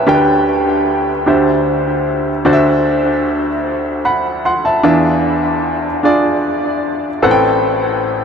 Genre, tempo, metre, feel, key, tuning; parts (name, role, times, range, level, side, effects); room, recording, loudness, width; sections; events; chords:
gospel; 50 BPM (dotted quarters); 6/8; straight; A4 = 441 Hz
bright upright piano; solo; 0.0-8.2 s; A1 to C6; -12 LUFS; equal; diffuse ambient delay
wet huge ambient reverb, RT60 7.4 s; dreamy mix soaked in reverb; -12 LUFS; side -6 dB against mid
0.0-8.2 A section
0.1 G/D; 1.3 D9sus4; 2.5 D9; 4.9 E7b9; 7.2 Am9